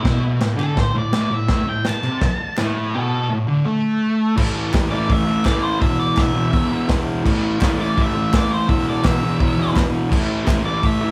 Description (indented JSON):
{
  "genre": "garage rock duo or trio",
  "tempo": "167 BPM",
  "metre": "4/4",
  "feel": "straight",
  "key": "A minor",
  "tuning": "A4 = 437 Hz",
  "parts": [
    { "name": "octave-fuzz lead guitar", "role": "melody", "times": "0.0-11.1 s", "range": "E4 to A5", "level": "-27 LUFS", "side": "equal", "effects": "distortion" },
    { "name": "thick fuzz guitar", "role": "riff", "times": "0.0-11.1 s", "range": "E2 to A3", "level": "-22 LUFS", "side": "equal", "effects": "distortion" },
    { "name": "crunchy breakbeat drum kit", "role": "drums", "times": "0.1-10.9 s", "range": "crash cymbal, hi-hat, kick drum, snare drum", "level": "-23 LUFS", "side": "equal", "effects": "none" },
    { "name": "group handclap", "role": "percussion", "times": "0.4-10.6 s", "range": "none", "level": "-38 LUFS", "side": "equal", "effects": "none" }
  ],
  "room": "moderate large studio reverb, RT60 1.3 s",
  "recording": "band playing live in one room",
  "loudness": "-19 LUFS",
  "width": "mono",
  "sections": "0.0-4.4 A section; 4.4-11.1 B section",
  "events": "none",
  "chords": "0.0 N.C.; 4.4 A5; 5.8 E5; 7.2 A5; 8.7 E5; 10.1 A5",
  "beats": "| 0.05 0.41 0.77 1.13 | 1.50 1.86 2.22 2.58 | 2.94 3.30 3.66 4.02 | 4.38 4.74 5.09 5.45 | 5.81 6.17 6.53 6.89 | 7.25 7.60 7.96 8.32 | 8.68 9.04 9.39 9.75 | 10.11 10.47 10.83"
}